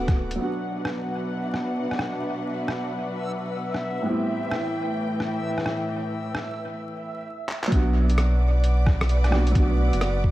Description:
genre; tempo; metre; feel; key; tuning
future garage; 131 BPM; 4/4; swing 64% on 16ths; B phrygian; A4 = 439 Hz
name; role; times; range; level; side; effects
warm upright piano; accompaniment; 0.0-10.3 s; A2 to F#4; -29 LUFS; right 1 dB; sidechain pumping, dub echo
clear symphonic string section; sustained chords; 0.0-10.3 s; A2 to D6; -29 LUFS; left 1 dB; sidechain pumping
warm sub bass; bass; 0.0-0.4, 7.7-10.3 s; D1 to B1; -21 LUFS; equal; tube saturation, sidechain pumping
electronic kick drum; drums; 0.1, 7.7-10.3 s; none; -20 LUFS; equal; vintage 12-bit sampler grit, studio reverb
lo-fi sampler-style drum kit; drums; 0.1-10.1 s; handclaps, hi-hat, rim click; -31 LUFS; equal; vintage 12-bit sampler grit, studio reverb, analog delay
backwards swelling texture; texture; 0.8-7.3 s; E5; -36 LUFS; right 1 dB; built-in reverb
room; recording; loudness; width
light reverb; echo-heavy mix, vinyl crackle; -22 LUFS; side -16 dB against mid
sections
0.4-7.7 A section; 7.7-10.3 B section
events
drum fill 7.5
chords
0.4 Bm; 4.1 Am7; 7.7 Bm

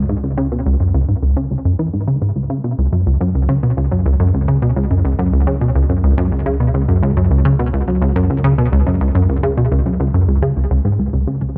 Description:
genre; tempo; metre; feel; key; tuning
ambient, sequencer-driven space music; 106 BPM; 4/4; straight; unclear; A4 = 440 Hz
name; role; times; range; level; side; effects
plucky analog bass; riff; 0.0-11.6 s; C#2 to E3; -16 LUFS; equal; analog chorus, tape echo
warm sub bass; bass; 0.0-11.6 s; C#2; -25 LUFS; equal; none
unison pluck; arpeggios; 11.4-11.5 s; C#4; -40 LUFS; equal; none
room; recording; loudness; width
light reverb; none; -16 LUFS; mono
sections
0.0-11.4 A section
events
none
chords
none

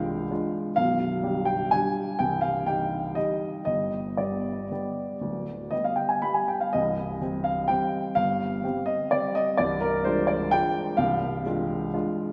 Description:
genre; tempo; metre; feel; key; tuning
classical, piano waltz; 113-135 BPM; 3/4; rubato; C minor; A4 = 440 Hz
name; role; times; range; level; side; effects
warm baby grand piano; solo; 0.0-12.3 s; B0 to B5; -27 LUFS; equal; none
room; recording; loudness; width
wet church reverb, RT60 3.3 s; recorded in a church or concert hall; -27 LUFS; mono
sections
0.0-12.3 A section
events
none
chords
0.0 Dm7b5/C; 0.8 G7/B; 2.2 Cm; 3.7 G; 6.7 Cm; 9.6 Dm7b5/C

